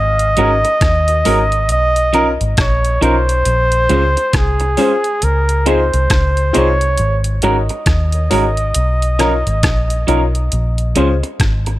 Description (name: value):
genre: lovers rock reggae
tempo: 68 BPM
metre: 4/4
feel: swing 61% on 16ths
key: unclear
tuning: A4 = 440 Hz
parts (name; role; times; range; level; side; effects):
- warm flugelhorn; melody; 0.0-11.4 s; Ab4 to Eb5; -17 LUFS; right 1 dB; tape echo
- vintage muted fingered electric bass; bass; 0.0-11.8 s; Ab1 to Eb2; -16 LUFS; equal; none
- detuned 8-bit digital drum machine; drums; 0.2-11.8 s; hi-hat, kick drum, rim click; -18 LUFS; equal; none
- warm grand piano; accompaniment; 0.4-11.1 s; Db4 to Db5; -20 LUFS; left 4 dB; none
- electric guitar through a small old amp; stabs; 0.4-11.7 s; F3 to C5; -20 LUFS; right 5 dB; none
room: light reverb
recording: none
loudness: -12 LUFS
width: side -16 dB against mid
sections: 0.0-11.8 A section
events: none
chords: 0.0 Ab9sus4; 1.7 Cbmaj9#11; 3.5 Bbm9; 5.2 Dbmaj7; 7.0 Ab9sus4; 8.7 Cbmaj9#11; 10.5 Bbm9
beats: 0.81 | 1.69 2.57 3.46 4.34 | 5.22 6.10 6.98 7.87 | 8.75 9.63 10.51 11.40